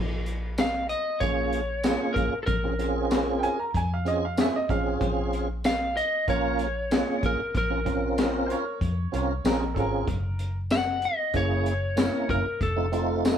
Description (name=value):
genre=straight-eighth soul blues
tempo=95 BPM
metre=4/4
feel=straight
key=Bb minor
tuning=A4 = 440 Hz
part: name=vintage muted fingered electric bass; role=bass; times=0.0-13.4 s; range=F1 to F2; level=-30 LUFS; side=equal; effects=none
part: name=crunchy breakbeat drum kit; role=drums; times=0.3-13.4 s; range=hi-hat, kick drum, snare drum, tambourine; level=-28 LUFS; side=left 1 dB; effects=none
part: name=lightly driven lead guitar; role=melody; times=0.6-13.4 s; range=A4 to Gb5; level=-28 LUFS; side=left 1 dB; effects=none
part: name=tonewheel organ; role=accompaniment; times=1.2-13.4 s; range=A3 to Bb4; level=-28 LUFS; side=right 3 dB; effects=overdrive, chorus vibrato, slow rotary speaker
part: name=bright upright piano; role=second line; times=3.4-10.5 s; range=A4 to Bb5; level=-31 LUFS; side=right 3 dB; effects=none
room=light reverb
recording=band playing live in one room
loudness=-24 LUFS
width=side -8 dB against mid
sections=0.0-13.4 A section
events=none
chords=0.0 Bbm7; 10.1 Gb7; 12.6 F7